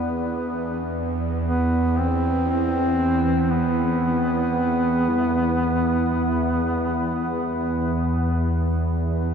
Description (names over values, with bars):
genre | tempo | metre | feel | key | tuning
dark ambient drone | free time | none | none | unclear | A4 = 441 Hz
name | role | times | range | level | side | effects
mellow duduk | melody | 0.0-8.7 s | B3 to C4 | -23 LUFS | equal | ping-pong delay
deep dark ambient pad | sustained chords | 0.0-9.3 s | E4 to E5 | -33 LUFS | right 3 dB | chorus, built-in reverb
bowed-like drone | drone | 0.0-9.3 s | E2 | -24 LUFS | equal | built-in reverb, phaser
carillon bells | arpeggios | 5.1-9.3 s | E3 | -34 LUFS | left 4 dB | none
room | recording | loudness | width
wet cathedral reverb, RT60 7.0 s | dark, warm production | -20 LUFS | side -7 dB against mid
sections
0.0-9.3 A section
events
fade-in on synth drone 0.0-9.3; fade-out on ambient pad 0.0-9.3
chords
0.0 E5